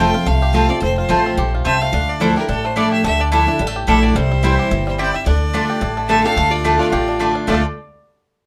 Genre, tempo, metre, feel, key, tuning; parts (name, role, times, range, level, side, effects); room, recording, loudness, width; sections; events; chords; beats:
bluegrass; 216 BPM; 4/4; swing 55% on 8ths; D minor; A4 = 442 Hz
bluegrass banjo; melody; 0.0-7.7 s; D3 to A4; -26 LUFS; equal
clear fiddle; melody; 0.0-7.6 s; A4 to G5; -25 LUFS; equal
picked steel-string acoustic guitar; accompaniment; 0.0-7.6 s; F2 to F4; -23 LUFS; equal
mandolin; stabs; 0.0-7.6 s; A3 to D6; -22 LUFS; equal
upright bass; bass; 0.0-7.6 s; F1 to D2; -22 LUFS; equal
lap resonator guitar; second line; 6.1-7.6 s; F4 to A4; -22 LUFS; equal
moderate small room reverb, RT60 0.5 s; -17 LUFS; mono
0.0-6.4 A section; 6.4-7.5 B section
0.0 F; 1.9 Dmadd9; 4.2 C; 5.3 Dm
0.27 0.55 | 0.83 1.10 1.38 1.66 | 1.94 2.22 2.49 2.77 | 3.05 3.33 3.60 3.88 | 4.16 4.44 4.71 4.99 | 5.27 5.54 5.82 6.10 | 6.38 6.65 6.93 7.21 | 7.48